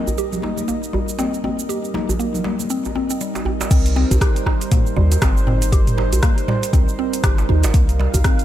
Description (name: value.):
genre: afro house.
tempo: 119 BPM.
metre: 4/4.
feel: swing 59% on 16ths.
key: C minor pentatonic.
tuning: A4 = 440 Hz.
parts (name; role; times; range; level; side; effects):
warm analog pad; sustained chords; 0.0-8.4 s; G3 to F5; -27 LUFS; right 2 dB; chorus, sidechain pumping.
mallet-like synth pluck; arpeggios; 0.0-8.4 s; G3 to G4; -25 LUFS; equal; chorus, phaser, sidechain pumping, ping-pong delay.
afro-pop drum kit; drums; 0.1-8.4 s; crash cymbal, hi-hat, rim click, shaker, toms; -25 LUFS; right 1 dB; studio ambience.
djembe; percussion; 0.1-8.2 s; none; -26 LUFS; right 1 dB; none.
congas; percussion; 0.3-3.1 s; none; -26 LUFS; left 2 dB; none.
warm 808-style bass; bass; 3.7-8.2 s; G1 to Eb2; -18 LUFS; equal; tube saturation, sidechain pumping.
electronic kick drum; drums; 3.7-8.4 s; none; -16 LUFS; equal; studio ambience.
room: digital ambience.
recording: none.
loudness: -16 LUFS.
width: side -12 dB against mid.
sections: 0.0-3.7 A section; 3.7-8.4 B section.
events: drop 3.7-8.4.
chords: 0.0 Cm7.